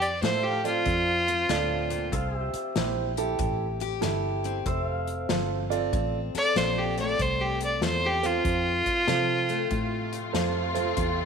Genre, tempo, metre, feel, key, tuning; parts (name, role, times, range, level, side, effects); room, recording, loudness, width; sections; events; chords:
honky-tonk and classic country; 95 BPM; 4/4; swing 65% on 8ths; F major; A4 = 439 Hz
clear fiddle; melody; 0.0-2.1, 6.4-10.1 s; F4 to D5; -26 LUFS; equal
picked steel-string acoustic guitar; accompaniment; 0.0-11.3 s; F2 to A4; -34 LUFS; left 11 dB
vintage muted fingered electric bass; bass; 0.0-11.3 s; F1 to C3; -32 LUFS; equal
unplugged drum kit; drums; 0.0-11.2 s; hi-hat, kick drum, snare drum; -33 LUFS; left 2 dB
warm concert grand piano; accompaniment; 0.2-11.2 s; E4 to D5; -31 LUFS; right 11 dB
pedal steel guitar; sustained chords; 0.2-11.3 s; G4 to F5; -36 LUFS; equal
rich studio string section; sustained chords; 9.7-11.3 s; C3 to F4; -32 LUFS; left 3 dB
moderate echo chamber reverb, RT60 2.5 s; 1960s-style stereo with parts hard left and right; -24 LUFS; side -6 dB against mid
0.0-11.3 A section
fiddle solo 0.0-11.3
0.0 F; 2.1 C; 4.7 F